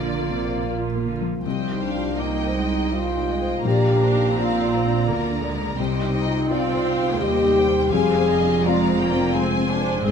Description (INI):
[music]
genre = cinematic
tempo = 84 BPM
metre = 3/4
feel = rubato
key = C minor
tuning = A4 = 440 Hz
[part]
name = rich studio violin section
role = melody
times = 0.0-10.1 s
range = D5 to Bb5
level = -32 LUFS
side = left 3 dB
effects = none
[part]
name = warm studio violin section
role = second line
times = 0.0-10.1 s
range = Bb4 to Ab5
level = -30 LUFS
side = left 1 dB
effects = none
[part]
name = dark baby grand piano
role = accompaniment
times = 0.0-10.1 s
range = Bb1 to D5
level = -27 LUFS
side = left 4 dB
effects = none
[part]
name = rich studio viola section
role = accompaniment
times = 0.0-10.1 s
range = G3 to F4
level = -29 LUFS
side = right 3 dB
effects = none
[part]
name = concert harp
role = arpeggios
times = 0.0-10.1 s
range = F2 to D6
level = -31 LUFS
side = left 7 dB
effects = none
[part]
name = rich studio cello section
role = bass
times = 0.0-10.1 s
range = C2 to D3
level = -27 LUFS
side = right 5 dB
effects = none
[part]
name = warm studio double bass section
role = bass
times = 0.0-10.1 s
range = F1 to Eb2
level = -29 LUFS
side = right 6 dB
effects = none
[part]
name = warm French horn section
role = sustained chords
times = 1.8-10.1 s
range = D4 to Ab4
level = -22 LUFS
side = left 2 dB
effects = none
[sound]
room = moderate scoring stage reverb, RT60 1.7 s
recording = close, detailed microphones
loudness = -19 LUFS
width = side -7 dB against mid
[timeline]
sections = 0.0-1.5 A section; 1.5-10.1 B section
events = none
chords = 0.0 Bb; 1.5 Cm; 3.7 Bb; 5.8 Cm; 7.9 Fm